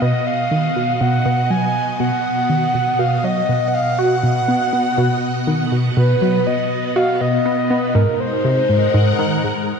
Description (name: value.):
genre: ambient, sequencer-driven space music.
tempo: 121 BPM.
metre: 4/4.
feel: straight.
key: B lydian.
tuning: A4 = 440 Hz.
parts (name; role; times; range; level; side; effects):
breathy flute-like synth lead; melody; 0.0-9.2 s; A#4 to G#5; -20 LUFS; equal; chorus, ping-pong delay.
phased string machine; sustained chords; 0.0-9.8 s; B2 to F#5; -22 LUFS; equal; ensemble chorus, phaser.
tight sequenced synth; riff; 0.0-9.5 s; G#2 to F#4; -19 LUFS; right 1 dB; chorus, ping-pong delay.
room: wet echo chamber reverb, RT60 2.3 s.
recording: echo-heavy mix.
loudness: -15 LUFS.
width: side -6 dB against mid.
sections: 0.0-9.8 A section.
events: fade-in on string machine 0.0-9.8.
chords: 0.0 B; 8.0 G#7.